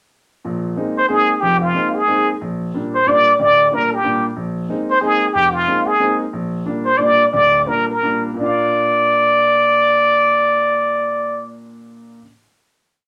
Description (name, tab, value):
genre	jazz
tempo	156-185 BPM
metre	3/4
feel	swing 64% on 8ths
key	Bb mixolydian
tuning	A4 = 439 Hz
part	clear grand piano	accompaniment	0.4-12.2 s	D1 to F5	-25 LUFS	equal	none
part	trumpet with plunger mute	melody	1.0-11.5 s	F4 to D5	-16 LUFS	equal	none
room	wet studio reverb, RT60 0.5 s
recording	none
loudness	-16 LUFS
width	mono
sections	0.4-8.4 A section; 8.4-10.7 final chord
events	slowing down 6.3-8.4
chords	0.4 Bb9sus4; 2.4 Gm/Bb; 4.4 Bb9sus4; 6.3 Gm/Bb; 8.4 Bb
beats	| 0.43 0.76 1.09 | 1.42 1.75 2.07 | 2.40 2.73 3.06 | 3.38 3.71 4.04 | 4.37 4.69 5.02 | 5.34 5.67 5.99 | 6.32 6.64 6.98 | 7.31 7.66 8.02 | 8.39 8.78 9.16 | 9.54 9.93 10.31